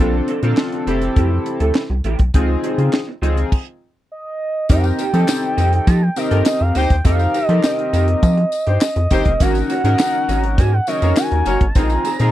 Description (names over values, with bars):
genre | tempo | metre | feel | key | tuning
early-eighties boogie funk | 102 BPM | 4/4 | straight | unclear | A4 = 441 Hz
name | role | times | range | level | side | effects
chorused polysynth | accompaniment | 0.0-12.3 s | Bb3 to Bb4 | -22 LUFS | left 2 dB | none
electric guitar through a small old amp | riff | 0.0-12.3 s | F3 to Bb4 | -25 LUFS | right 4 dB | analog chorus
rubbery square bass | bass | 0.0-12.3 s | F1 to F3 | -17 LUFS | equal | none
tight funk drum kit | drums | 0.3-12.3 s | crash cymbal, handclaps, hi-hat, kick drum, snare drum | -16 LUFS | equal | none
expressive portamento lead | melody | 4.1-12.3 s | Eb5 to Bb5 | -21 LUFS | right 1 dB | chorus
tambourine | percussion | 4.7-12.3 s | none | -34 LUFS | left 19 dB | none
mellow horn section | second line | 6.3-11.7 s | Eb4 to Db5 | -23 LUFS | left 6 dB | none
room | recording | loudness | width
little or no reverb | dry, close 1970s-style studio recording | -14 LUFS | side -13 dB against mid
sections
0.0-4.7 A section; 4.7-12.3 B section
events
stop 3.5-4.7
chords
0.0 Bbmaj9; 0.9 Fmaj9; 2.3 Dbmaj9; 3.5 N.C.; 4.7 F9sus4; 9.4 Ab9sus4; 11.8 Bb9sus4